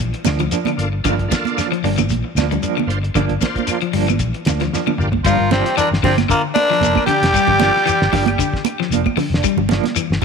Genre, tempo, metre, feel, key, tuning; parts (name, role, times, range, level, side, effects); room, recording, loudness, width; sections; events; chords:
afrobeat; 114 BPM; 4/4; swing 55% on 16ths; G dorian; A4 = 440 Hz
electric guitar at the edge of break-up; arpeggios; 0.0-10.2 s; D3 to G3; -23 LUFS; left 13 dB; spring reverb, tape echo
fingered electric bass; bass; 0.0-10.2 s; F1 to D2; -21 LUFS; left 1 dB
semi-hollow electric guitar; stabs; 0.1-10.2 s; F3 to D4; -25 LUFS; right 12 dB; tremolo
cloth-damped thuddy drum kit; drums; 0.1-10.2 s; hi-hat, kick drum, snare drum, toms; -23 LUFS; equal
congas; percussion; 0.2-10.2 s; -22 LUFS; right 14 dB
claves; percussion; 0.3-10.1 s; -30 LUFS; left 15 dB
shekere; percussion; 0.3-10.1 s; -27 LUFS; left 6 dB
bright tonewheel organ; accompaniment; 0.8-5.1 s; Bb3 to C5; -26 LUFS; equal; chorus vibrato, slow rotary speaker
raspy baritone saxophone; second line; 5.2-8.6 s; Bb2 to G3; -24 LUFS; right 11 dB
raspy tenor saxophone; melody; 5.3-8.6 s; Bb3 to G4; -17 LUFS; left 3 dB; tape echo
breathy trumpet; second line; 5.3-8.6 s; F4 to D5; -26 LUFS; right 12 dB
light reverb; 1960s-style stereo with parts hard left and right; -15 LUFS; side -5 dB against mid
0.0-5.3 A section; 5.3-10.2 B section
drum fill 4.7-5.3
0.0 Gm7